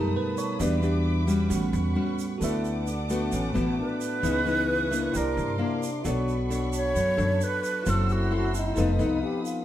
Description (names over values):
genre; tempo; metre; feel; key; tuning
bossa nova; 132 BPM; 4/4; straight; D major; A4 = 444 Hz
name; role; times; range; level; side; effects
bell-like tine electric piano; accompaniment; 0.0-9.6 s; G3 to E5; -33 LUFS; right 4 dB; analog chorus
nylon-string guitar; accompaniment; 0.0-9.6 s; A2 to C#5; -29 LUFS; left 3 dB; none
dark studio string section; sustained chords; 0.0-9.6 s; A4 to E6; -38 LUFS; right 1 dB; none
upright bass; bass; 0.0-9.2 s; F1 to G2; -28 LUFS; equal; none
tube shaker; percussion; 0.4-9.6 s; none; -42 LUFS; right 6 dB; none
breathy trombone; second line; 2.4-9.6 s; B3 to G4; -34 LUFS; left 3 dB; none
bright alto flute; melody; 3.8-9.4 s; Eb4 to C#5; -28 LUFS; right 2 dB; plate reverb
room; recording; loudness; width
wet studio reverb, RT60 0.9 s; heard from further back in the room; -24 LUFS; side -12 dB against mid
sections
0.0-2.4 A section; 2.4-9.6 B section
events
tine electric piano solo 0.0-2.4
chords
0.0 B7b13; 0.6 Em7; 1.5 A13; 2.4 D6; 4.2 C#m9; 5.1 C9; 6.0 Bm9; 7.9 F#m7b5; 8.8 F7#11